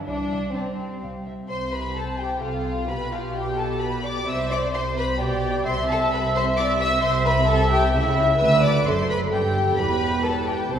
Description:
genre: quick classical-period movement for string orchestra.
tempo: 130 BPM.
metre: 3/4.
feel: straight.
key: C major.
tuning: A4 = 435 Hz.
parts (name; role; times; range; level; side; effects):
dark studio cello section; bass; 0.0-10.8 s; E2 to G3; -28 LUFS; right 2 dB; none.
dark studio violin section; melody; 0.1-10.8 s; E5 to E6; -27 LUFS; left 4 dB; none.
clear studio violin section; second line; 0.1-10.8 s; C4 to E5; -26 LUFS; equal; none.
warm studio viola section; accompaniment; 0.1-10.8 s; C4 to E5; -26 LUFS; right 1 dB; none.
dark studio double bass section; bass; 0.1-10.8 s; E1 to D2; -28 LUFS; right 1 dB; none.
room: wet concert hall reverb, RT60 2.1 s.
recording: heard from further back in the room.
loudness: -20 LUFS.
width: side -8 dB against mid.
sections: 0.0-1.5 A section; 1.5-10.8 B section.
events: none.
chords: 0.1 C5; 1.5 F/C; 2.9 G/B; 4.3 Cmaj9; 5.2 G/B; 5.7 C; 7.9 C#m; 8.4 D; 9.3 Gsus2; 9.8 Em.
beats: | 0.07 0.55 1.02 | 1.50 1.97 2.43 | 2.90 3.36 3.81 | 4.28 4.74 5.20 | 5.66 6.12 6.58 | 7.03 7.49 7.95 | 8.41 8.86 9.32 | 9.78 10.25 10.72.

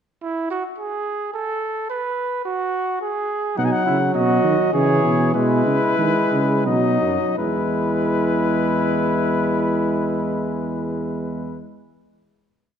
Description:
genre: classical, imitative canzona for brass ensemble.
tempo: 80-108 BPM.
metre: 3/4.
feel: straight.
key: E major.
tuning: A4 = 440 Hz.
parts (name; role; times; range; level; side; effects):
dark trumpet; second line; 0.2-11.6 s; D#4 to B4; -24 LUFS; right 3 dB; none.
mellow trumpet; melody; 3.6-11.6 s; B4 to G#5; -24 LUFS; left 8 dB; none.
clear trombone; accompaniment; 3.6-11.6 s; E3 to G#3; -23 LUFS; right 1 dB; none.
warm tuba; bass; 3.6-11.6 s; E2 to D#3; -23 LUFS; right 2 dB; none.
room: wet recital hall reverb, RT60 1.4 s.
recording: dark, warm production.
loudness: -18 LUFS.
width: side -8 dB against mid.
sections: 0.2-7.4 exposition; 7.4-11.9 final chord.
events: slowing down 2.7-7.4.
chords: 0.2 N.C.; 3.6 B; 4.7 E6; 5.3 E/B; 6.7 B; 7.4 E.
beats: | 0.22 0.79 1.34 | 1.90 2.46 3.02 | 3.58 4.15 4.74 | 5.35 5.99 6.66 | 7.38 8.13 8.88 | 9.63 10.38 11.13.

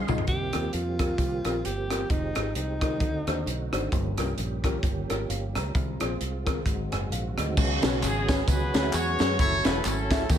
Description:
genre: uptempo gospel.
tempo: 132 BPM.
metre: 4/4.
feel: swing 58% on 8ths.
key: unclear.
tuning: A4 = 440 Hz.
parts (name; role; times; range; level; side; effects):
tonewheel organ; sustained chords; 0.0-10.4 s; D3 to C6; -35 LUFS; right 5 dB; slow rotary speaker, chorus vibrato.
fingered electric bass; bass; 0.0-10.4 s; E1 to F#2; -31 LUFS; equal; none.
dark concert grand piano; accompaniment; 0.1-10.4 s; G2 to Bb5; -33 LUFS; left 5 dB; none.
crisp fusion drum kit; drums; 0.1-10.4 s; crash cymbal, hi-hat, kick drum, rim click, snare drum, toms; -28 LUFS; equal; none.
tambourine and handclaps; percussion; 0.1-0.2, 7.6-10.4 s; none; -38 LUFS; equal; none.
warm alto saxophone; melody; 0.3-3.7 s; Eb4 to G4; -32 LUFS; equal; none.
clear horn section; melody; 8.0-10.4 s; A#3 to C#5; -28 LUFS; left 1 dB; slapback echo.
room: light reverb, small room ambience.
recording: none.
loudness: -24 LUFS.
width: side -9 dB against mid.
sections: 0.3-7.6 A section; 7.6-10.4 B section.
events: drum fill 0.0.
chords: 0.3 C7sus4; 2.1 Fm9; 3.0 D7b9; 3.9 Gm7b5; 5.8 Fm; 6.7 Ab7; 7.6 C#7sus4; 9.4 F#m9.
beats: | 0.28 0.73 1.19 1.65 | 2.10 2.56 3.01 3.47 | 3.92 4.38 4.84 5.29 | 5.75 6.21 6.66 7.12 | 7.58 8.03 8.48 8.94 | 9.39 9.85 10.30.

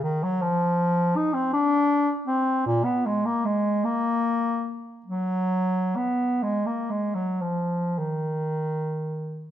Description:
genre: classical, free, expressive piece for unaccompanied bass clarinet.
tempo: 35-56 BPM (dotted quarters).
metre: 6/8.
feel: rubato.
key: Eb minor.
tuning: A4 = 440 Hz.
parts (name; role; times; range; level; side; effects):
warm bass clarinet; solo; 0.0-9.5 s; Bb2 to Eb4; -23 LUFS; equal; none.
room: moderate recital hall reverb, RT60 1.4 s.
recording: close, detailed microphones.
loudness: -23 LUFS.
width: side -11 dB against mid.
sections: 0.0-9.5 A section.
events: none.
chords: none.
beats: | 0.41 1.51 | 2.65 3.82 | 5.05 6.42 | 7.96.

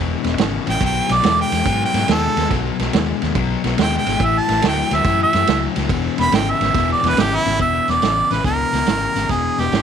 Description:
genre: electric blues shuffle.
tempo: 141 BPM.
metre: 4/4.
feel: swing 67% on 8ths.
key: E mixolydian.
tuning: A4 = 440 Hz.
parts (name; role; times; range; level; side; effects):
overdriven semi-hollow guitar; riff; 0.0-9.8 s; E2 to G#3; -22 LUFS; left 13 dB; none.
fingered electric bass; bass; 0.0-9.8 s; E1 to G#2; -23 LUFS; equal; none.
vintage drum kit; drums; 0.2-9.8 s; hi-hat, kick drum, ride cymbal, snare drum; -22 LUFS; right 6 dB; none.
bright harmonica; melody; 0.7-9.8 s; E4 to B5; -19 LUFS; right 3 dB; overdrive.
room: light reverb, small room ambience.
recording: 1960s-style stereo with parts hard left and right.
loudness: -15 LUFS.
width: side -8 dB against mid.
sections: 0.0-7.6 A section; 7.6-9.8 B section.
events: harmonica solo 0.0-7.6.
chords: 0.0 E; 0.8 B; 4.2 A; 5.9 E.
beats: 0.38 | 0.81 1.23 1.66 2.08 | 2.51 2.93 3.36 3.78 | 4.20 4.63 5.05 5.48 | 5.90 6.33 6.75 7.17 | 7.60 8.02 8.45 8.87 | 9.30 9.72.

